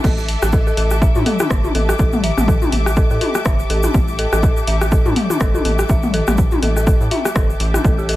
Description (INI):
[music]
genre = minimal techno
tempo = 123 BPM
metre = 4/4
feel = swing 57% on 16ths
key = unclear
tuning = A4 = 440 Hz
[part]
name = dark detuned synth bell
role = riff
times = 0.0-8.2 s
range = G4 to E5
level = -25 LUFS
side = equal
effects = chorus, sidechain pumping, digital delay
[part]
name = rubbery square bass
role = bass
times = 0.0-8.2 s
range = G1 to A2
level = -20 LUFS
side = equal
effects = sidechain pumping
[part]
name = electronic kick drum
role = drums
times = 0.0-8.0 s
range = none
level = -17 LUFS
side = equal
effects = none
[part]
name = punchy analog drum machine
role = drums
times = 0.0-8.2 s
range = crash cymbal, hi-hat, rim click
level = -26 LUFS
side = equal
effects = none
[part]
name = egg shaker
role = percussion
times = 0.0-8.1 s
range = none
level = -33 LUFS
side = left 2 dB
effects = none
[part]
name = bubbling stepped-filter texture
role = texture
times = 1.1-8.2 s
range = G4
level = -32 LUFS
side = right 2 dB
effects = none
[part]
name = rich studio string section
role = texture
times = 0.0-8.2 s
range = A4 to D6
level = -26 LUFS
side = left 2 dB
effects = sidechain pumping
[part]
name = minimal click drum kit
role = percussion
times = 0.4-7.8 s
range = rim click, toms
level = -20 LUFS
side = left 2 dB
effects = none
[sound]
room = light reverb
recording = none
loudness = -14 LUFS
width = side -16 dB against mid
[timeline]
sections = 0.0-8.2 A section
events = none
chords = 0.0 A7(no3)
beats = | 0.04 0.53 1.02 1.50 | 1.99 2.48 2.97 3.46 | 3.94 4.43 4.92 5.41 | 5.89 6.38 6.87 7.36 | 7.85